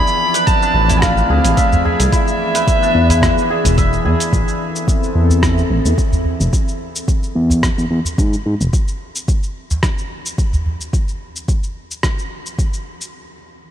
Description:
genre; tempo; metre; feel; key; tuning
organic downtempo; 109 BPM; 4/4; swing 54% on 16ths; E phrygian dominant; A4 = 442 Hz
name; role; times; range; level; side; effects
dark kamancheh; melody; 0.0-3.8 s; E5 to B5; -19 LUFS; equal; vintage 12-bit sampler grit, analog delay
airy breathy pad; sustained chords; 0.0-6.5 s; E3 to E5; -22 LUFS; left 1 dB; chorus, sidechain pumping
santur; arpeggios; 0.0-7.1 s; D4 to E5; -23 LUFS; equal; diffuse ambient delay
dusty soul sampler-style drum kit; drums; 0.1-13.1 s; hi-hat, rim click, shaker; -25 LUFS; equal; overdrive
electronic kick drum; drums; 0.5-12.7 s; none; -17 LUFS; equal; overdrive
smooth gliding synth bass; bass; 0.7-8.7 s; E1 to G#2; -15 LUFS; equal; sidechain pumping
udu; percussion; 0.9-10.8 s; none; -19 LUFS; right 1 dB; none
room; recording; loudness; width
moderate cathedral reverb, RT60 7.2 s; dreamy mix soaked in reverb; -14 LUFS; side -10 dB against mid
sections
0.0-4.3 A section; 4.3-13.1 B section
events
none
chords
0.0 Dm7; 2.1 E7; 4.3 Am; 6.5 E; 8.7 N.C.

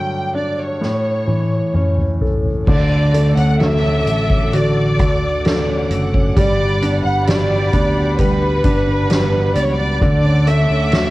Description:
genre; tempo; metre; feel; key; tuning
pop ballad; 65 BPM; 4/4; straight; D major; A4 = 440 Hz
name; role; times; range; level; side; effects
warm studio violin section; melody; 0.0-11.1 s; B4 to G5; -21 LUFS; equal; cassette tape
clear concert grand piano; accompaniment; 0.0-11.1 s; G2 to A4; -21 LUFS; left 1 dB; none
soft-mallet drum kit; drums; 0.8-11.1 s; crash cymbal, hi-hat, kick drum, snare drum, toms; -19 LUFS; equal; none
clear studio string section; sustained chords; 2.7-11.1 s; G3 to D6; -27 LUFS; left 1 dB; none
fingerpicked steel-string acoustic guitar; arpeggios; 2.7-11.1 s; D3 to F#4; -21 LUFS; right 2 dB; none
fingered electric bass; bass; 2.7-11.1 s; F#1 to D2; -20 LUFS; equal; none
room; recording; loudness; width
light reverb; home recording on cassette; -14 LUFS; side -18 dB against mid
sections
0.0-2.7 A section; 2.7-11.1 B section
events
drum fill 0.8-2.7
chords
0.0 G5; 0.8 A; 2.7 Dmaj7; 6.4 Gmaj7; 10.0 Dmaj7

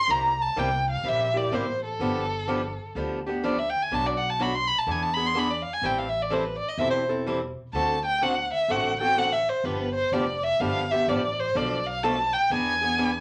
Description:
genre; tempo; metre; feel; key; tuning
acoustic string swing (jazz manouche); 126 BPM; 4/4; swing 64% on 8ths; G mixolydian; A4 = 441 Hz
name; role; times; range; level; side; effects
warm violin; melody; 0.0-13.2 s; A4 to C6; -27 LUFS; equal; none
picked swing-style acoustic guitar; accompaniment; 0.1-13.1 s; B2 to A4; -31 LUFS; equal; none
upright bass; bass; 0.1-13.2 s; E1 to E2; -37 LUFS; equal; none
room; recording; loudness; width
wet club reverb, RT60 0.5 s; none; -26 LUFS; mono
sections
0.0-13.2 A section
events
violin solo 0.0-13.2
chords
0.0 C7; 2.0 G7; 3.9 Bm7; 4.9 E7; 5.8 Am7; 7.7 D7; 9.6 G7; 11.6 Bm7b5; 12.5 E7

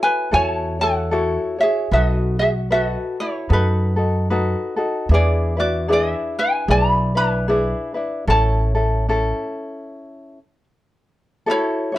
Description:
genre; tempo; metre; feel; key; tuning
Hawaiian; 75 BPM; 4/4; swing 58% on 8ths; A major; A4 = 440 Hz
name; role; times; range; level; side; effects
ukulele; melody; 0.0-12.0 s; D#4 to B5; -20 LUFS; equal; plate reverb
ukulele; accompaniment; 0.0-12.0 s; C#4 to C#5; -23 LUFS; left 2 dB; none
upright bass; bass; 0.3-9.3 s; A1 to F#2; -20 LUFS; equal; none
room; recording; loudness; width
moderate small room reverb, RT60 0.5 s; none; -17 LUFS; side -15 dB against mid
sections
0.0-11.5 A section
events
stop 9.9-11.5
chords
0.0 A6; 1.9 B7; 5.1 E7; 8.3 A; 11.5 A6

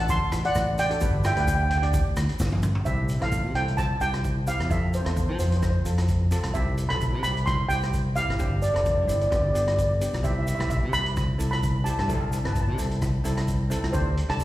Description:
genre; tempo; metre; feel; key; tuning
calypso; 130 BPM; 4/4; swing 53% on 16ths; C major; A4 = 440 Hz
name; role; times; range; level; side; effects
steel pan; melody; 0.0-14.4 s; C5 to C6; -27 LUFS; right 1 dB; slapback echo
steel pan; accompaniment; 0.0-14.4 s; B3 to D5; -34 LUFS; right 1 dB; slapback echo
modern bright fingered electric bass; bass; 0.0-14.4 s; F1 to F3; -26 LUFS; equal; none
street-band drum kit; drums; 0.1-14.4 s; hi-hat, kick drum, rim click, snare drum, toms; -29 LUFS; equal; none
egg shaker; percussion; 0.1-14.4 s; none; -44 LUFS; right 2 dB; slapback echo
room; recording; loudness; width
small room ambience; live gig heard through the venue's PA, recital hall reverb; -22 LUFS; side -15 dB against mid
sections
0.0-2.9 A section; 2.9-14.4 B section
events
drum fill 2.4-2.9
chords
0.0 D; 1.0 G; 2.9 C; 4.7 Fmaj7; 6.5 Cmaj7; 8.4 G7sus4; 9.3 G; 10.2 Cmaj7; 12.1 Am; 13.9 D7sus4

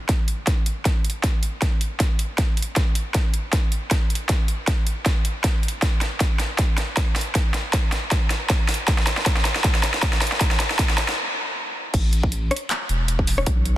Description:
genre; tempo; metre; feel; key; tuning
future bass; 157 BPM; 4/4; swing 55% on 16ths, half-time; unclear; A4 = 440 Hz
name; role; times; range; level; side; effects
big-room dance drum kit; drums; 0.1-13.7 s; crash cymbal, handclaps, hi-hat, rim click, snare drum; -24 LUFS; equal; overdrive, high-pass filter on snare, small room ambience, high-pass filter on toms, high-pass filter on hats, high-pass filter on cymbals
electronic kick drum; drums; 0.1-13.6 s; none; -21 LUFS; equal; overdrive, small room ambience
saturated sub bass; bass; 11.9-13.7 s; E1 to B1; -22 LUFS; equal; sidechain pumping
room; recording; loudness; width
light reverb; dense, heavily limited modern master; -19 LUFS; side -14 dB against mid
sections
0.0-11.9 A section; 11.9-13.8 B section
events
build-up 0.0-11.9; drum fill 0.0-11.2; stop 11.2-11.9; drop 11.9-13.8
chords
none

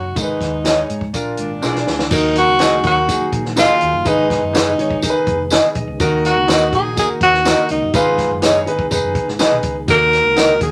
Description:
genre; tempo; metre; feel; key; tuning
uptempo 1960s-style soul; 124 BPM; 4/4; straight; Eb minor; A4 = 440 Hz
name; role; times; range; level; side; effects
breathy tenor saxophone; melody; 0.0-10.7 s; D4 to Bb4; -18 LUFS; equal; none
hollow-body short-scale fingered electric bass; bass; 0.0-10.7 s; F1 to Ab2; -28 LUFS; equal; none
clear concert grand piano; accompaniment; 0.2-10.7 s; Ab2 to Ab5; -23 LUFS; equal; none
compact cocktail drum kit; drums; 0.2-10.7 s; crash cymbal, hi-hat, kick drum, snare drum; -23 LUFS; equal; none
tambourine; percussion; 0.2-10.5 s; none; -28 LUFS; equal; none
electric guitar through a small old amp; stabs; 0.6-10.5 s; D4 to Eb5; -20 LUFS; equal; harmonic tremolo
tonewheel organ; sustained chords; 2.1-10.7 s; Eb3 to Ab4; -29 LUFS; equal; slow rotary speaker, overdrive
room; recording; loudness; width
moderate studio ambience, RT60 0.5 s; none; -16 LUFS; mono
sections
0.0-2.1 A section; 2.1-10.7 B section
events
drum fill 1.6-2.1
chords
0.2 Abm; 1.1 Bb; 2.1 Ebm; 4.1 Abm; 6.0 Ebm; 7.9 Abm; 9.9 Ebm

